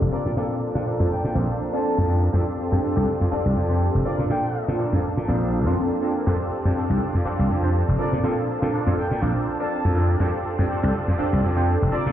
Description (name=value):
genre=house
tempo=122 BPM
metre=4/4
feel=swing 56% on 16ths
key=F major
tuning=A4 = 441 Hz
part: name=funky polysynth comp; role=accompaniment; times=0.0-12.1 s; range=C4 to D5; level=-25 LUFS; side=equal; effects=chorus, phaser, low-pass filter
part: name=clear studio violin section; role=sustained chords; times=0.0-12.1 s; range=Bb3 to A5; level=-35 LUFS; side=equal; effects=vintage 12-bit sampler grit, low-pass filter
part: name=direct-recorded clean electric guitar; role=riff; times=0.0-12.1 s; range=F3 to A4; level=-31 LUFS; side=right 1 dB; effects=ensemble chorus, low-pass filter
part: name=glassy slap bass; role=bass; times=0.0-12.1 s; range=F1 to Bb2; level=-21 LUFS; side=equal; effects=low-pass filter
part: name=brilliant trumpet section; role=melody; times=0.1-4.7, 8.0-12.1 s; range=D5 to A5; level=-32 LUFS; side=left 1 dB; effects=low-pass filter, tape echo
room=moderate echo chamber reverb, RT60 2.2 s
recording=played on a big sound system in a bare room, stone room reverb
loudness=-20 LUFS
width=side -11 dB against mid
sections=0.0-12.1 A section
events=filter sweep 0.0-12.1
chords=0.1 Bbmaj7; 2.3 F6; 4.1 Bbmaj7; 6.3 F6; 8.0 Bbmaj7; 10.2 F6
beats=| 0.37 0.86 1.35 1.84 | 2.33 2.83 3.32 3.81 | 4.30 4.79 5.29 5.78 | 6.27 6.76 7.25 7.74 | 8.24 8.73 9.22 9.71 | 10.20 10.70 11.19 11.68